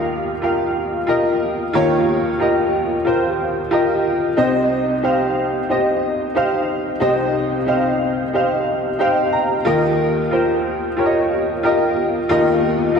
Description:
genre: pop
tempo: 91 BPM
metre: 4/4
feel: straight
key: unclear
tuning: A4 = 435 Hz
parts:
  - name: clear upright piano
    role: solo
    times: 0.0-13.0 s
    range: C2 to Bb5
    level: -16 LUFS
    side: equal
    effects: analog chorus, analog delay
room: wet lush hall reverb, RT60 2.3 s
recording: dreamy mix soaked in reverb, lossy compression artefacts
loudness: -16 LUFS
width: side -6 dB against mid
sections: 0.0-13.0 A section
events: upright piano fill 8.7-9.7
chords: 0.0 Ebadd9; 4.4 Cm; 9.7 Ebadd9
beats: 0.43 1.09 | 1.75 2.40 3.06 3.72 | 4.38 5.04 5.70 6.36 | 7.02 7.68 8.34 9.00 | 9.66 10.32 10.98 11.64 | 12.30 12.96

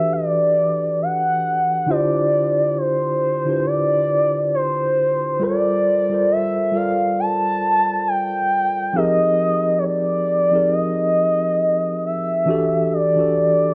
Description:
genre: R&B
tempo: 68 BPM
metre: 4/4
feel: swing 58% on 16ths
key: E phrygian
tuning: A4 = 440 Hz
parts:
  - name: gliding portamento lead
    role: melody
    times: 0.0-13.7 s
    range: C5 to A5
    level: -20 LUFS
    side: equal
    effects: chorus
  - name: mellow tine electric piano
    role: accompaniment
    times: 0.0-13.7 s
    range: D3 to D5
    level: -25 LUFS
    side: equal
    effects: none
room: moderate studio reverb, RT60 0.7 s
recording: none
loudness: -19 LUFS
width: mono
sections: 0.0-12.5 A section; 12.5-13.7 B section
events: none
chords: 0.0 Em11; 1.9 Dm11; 5.4 Gm11; 8.9 Fm11; 12.5 Em11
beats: 0.12 1.00 | 1.88 2.77 3.65 4.53 | 5.41 6.30 7.18 8.06 | 8.94 9.82 10.71 11.59 | 12.47 13.36

